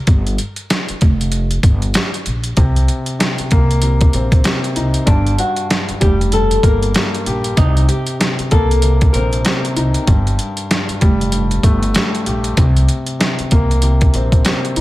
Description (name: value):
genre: hip hop, boom-bap hip-hop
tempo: 96 BPM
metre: 4/4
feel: swing 60% on 16ths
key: G minor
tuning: A4 = 439 Hz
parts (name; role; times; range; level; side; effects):
- upright bass; bass; 0.1-14.8 s; F1 to C2; -16 LUFS; equal; none
- trip hop sampler-style drum kit; drums; 0.1-14.8 s; hi-hat, kick drum, snare drum; -15 LUFS; equal; overdrive
- dark grand piano; accompaniment; 2.6-14.8 s; G2 to G4; -20 LUFS; left 1 dB; cassette tape, high-pass filter, low-pass filter
- flamenco guitar; melody; 5.1-9.4 s; D4 to Bb4; -21 LUFS; left 2 dB; high-pass filter, low-pass filter, tape echo
room: small room ambience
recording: none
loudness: -13 LUFS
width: side -17 dB against mid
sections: 0.0-14.8 A section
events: break 0.0-2.6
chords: 0.1 Gm; 2.6 Cm7; 5.1 Gm; 7.6 Cm7; 10.1 Gsus2; 12.6 C7(no3)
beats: | 0.07 0.70 1.32 1.95 | 2.57 3.20 3.82 4.45 | 5.07 5.70 6.32 6.95 | 7.57 8.20 8.82 9.45 | 10.07 10.70 11.32 11.95 | 12.57 13.20 13.82 14.45